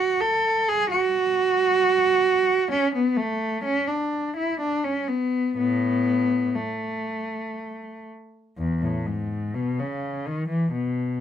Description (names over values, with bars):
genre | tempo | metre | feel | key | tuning
classical, baroque-style suite movement for unaccompanied cello | 57-67 BPM | 3/4 | rubato | A major | A4 = 444 Hz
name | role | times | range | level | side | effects
rich cello | solo | 0.0-11.2 s | E2 to A4 | -22 LUFS | right 1 dB | none
room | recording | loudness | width
light reverb | none | -21 LUFS | side -9 dB against mid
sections
0.0-8.6 A section; 8.6-11.2 A section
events
none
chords
none